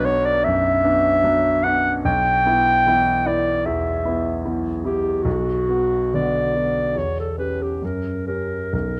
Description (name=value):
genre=classical, romantic duo for clarinet and grand piano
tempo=65-76 BPM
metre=4/4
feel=rubato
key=B minor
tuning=A4 = 440 Hz
part: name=dark clarinet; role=melody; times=0.0-9.0 s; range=F#4 to G5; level=-22 LUFS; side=equal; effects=none
part: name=warm grand piano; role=accompaniment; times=0.0-9.0 s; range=B1 to G4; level=-25 LUFS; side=equal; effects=none
room=moderate recital hall reverb, RT60 1.5 s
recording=close, detailed microphones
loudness=-20 LUFS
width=mono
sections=0.0-9.0 A section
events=none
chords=0.0 Bm; 2.0 Em/B; 5.3 Bm; 7.0 C#dim/E; 7.8 F#